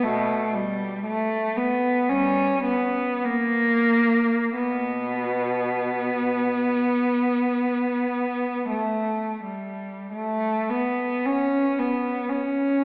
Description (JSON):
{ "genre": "classical, free, expressive piece for unaccompanied cello", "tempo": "35-60 BPM", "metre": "4/4", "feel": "rubato", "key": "unclear", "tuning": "A4 = 438 Hz", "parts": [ { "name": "warm cello", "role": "solo", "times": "0.0-12.8 s", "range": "B2 to C#4", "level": "-24 LUFS", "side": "equal", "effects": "none" } ], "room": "wet concert hall reverb, RT60 2.2 s", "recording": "heard from further back in the room, AM radio sound", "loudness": "-24 LUFS", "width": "mono", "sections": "0.0-10.1 A section; 10.1-12.8 B section", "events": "none", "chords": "none" }